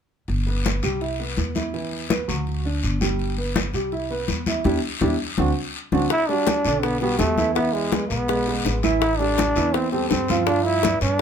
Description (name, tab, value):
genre	latin, salsa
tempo	165 BPM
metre	4/4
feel	straight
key	G major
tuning	A4 = 435 Hz
part	upright bass	bass	0.3-11.2 s	G1 to G2	-26 LUFS	equal	none
part	congas	percussion	0.3-11.2 s	none	-26 LUFS	left 4 dB	none
part	guiro	percussion	0.3-11.2 s	none	-32 LUFS	left 5 dB	none
part	dark grand piano	accompaniment	0.5-11.1 s	D3 to F5	-25 LUFS	right 3 dB	none
part	growling trombone	melody	6.1-11.2 s	G#3 to E4	-22 LUFS	equal	none
part	bongos	percussion	6.1-11.2 s	none	-28 LUFS	left 5 dB	none
room	moderate small room reverb, RT60 0.5 s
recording	band playing live in one room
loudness	-20 LUFS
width	side -8 dB against mid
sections	0.3-6.1 A section; 6.1-11.2 B section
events	band accent 4.7-6.1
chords	0.3 G; 1.0 Cmaj7; 1.7 E5; 2.5 D; 3.2 G; 3.9 Cmaj7; 4.7 Em7; 5.4 D7; 6.1 Gmaj7; 7.6 E; 9.0 Am7; 10.5 G6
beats	| 0.29 0.65 1.02 1.38 | 1.74 2.11 2.47 2.83 | 3.20 3.56 3.93 4.29 | 4.65 5.02 5.38 5.75 | 6.11 6.47 6.84 7.20 | 7.56 7.93 8.29 8.65 | 9.02 9.38 9.74 10.11 | 10.47 10.84 11.20